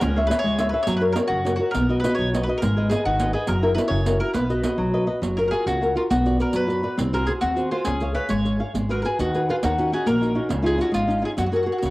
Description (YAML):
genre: italian folk, Italian serenade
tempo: 137 BPM (dotted quarters)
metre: 6/8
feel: rubato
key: B major, F# major from 5.2 s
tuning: A4 = 440 Hz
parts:
  - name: mandolin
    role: melody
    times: 0.0-11.9 s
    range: E#4 to C#5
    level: -27 LUFS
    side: equal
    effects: cassette tape
  - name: flamenco guitar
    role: accompaniment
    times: 0.0-11.9 s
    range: C#3 to E#5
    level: -22 LUFS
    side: equal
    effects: cassette tape
  - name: upright bass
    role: bass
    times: 0.0-11.9 s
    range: F#1 to F#2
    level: -27 LUFS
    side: equal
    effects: tube saturation
  - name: riq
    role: percussion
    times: 0.0-11.9 s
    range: none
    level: -31 LUFS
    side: right 3 dB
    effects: none
room: moderate spring reverb, RT60 1.3 s, small room ambience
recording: home recording on cassette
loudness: -20 LUFS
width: side -19 dB against mid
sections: 0.0-5.2 A section; 5.2-11.9 B section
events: none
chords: 0.0 C#m; 0.9 F#; 1.7 B; 2.6 G#m; 3.5 F#7; 4.3 B; 5.2 F#maj7; 6.1 Bm; 7.0 G#7/B#; 7.9 C#; 8.7 G#m7; 9.6 D#m7; 10.5 C#add9; 11.4 F#add9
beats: | 0.01 0.44 | 0.87 1.30 | 1.74 2.18 | 2.62 3.06 | 3.49 3.92 | 4.35 4.79 | 5.23 5.67 | 6.11 6.54 | 6.98 7.42 | 7.85 8.30 | 8.75 9.20 | 9.64 10.07 | 10.51 10.94 | 11.38 11.83